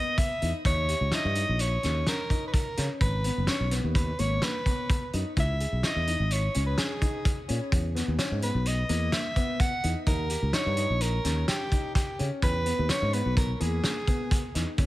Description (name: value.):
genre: progressive instrumental, band music in an uneven meter.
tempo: 127 BPM.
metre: 5/4.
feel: straight.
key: unclear.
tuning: A4 = 441 Hz.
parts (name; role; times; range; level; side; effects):
warm soprano saxophone; melody; 0.0-14.5 s; G4 to Gb5; -31 LUFS; right 1 dB; digital delay.
dark baby grand piano; arpeggios; 0.0-14.9 s; Bb3 to Ab4; -35 LUFS; left 3 dB; digital delay.
loose indie drum kit; drums; 0.2-14.9 s; hi-hat, kick drum, snare drum; -28 LUFS; equal; none.
sustaining fretless electric bass; bass; 0.4-14.9 s; Gb1 to Db3; -28 LUFS; equal; none.
room: small room ambience.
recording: none.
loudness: -25 LUFS.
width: side -16 dB against mid.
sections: 0.0-14.8 A section.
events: none.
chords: 0.0 Emaj7(no3); 0.7 Eb7; 3.0 Abm; 5.4 Dbm; 7.7 E5; 10.1 Eb7; 12.4 E.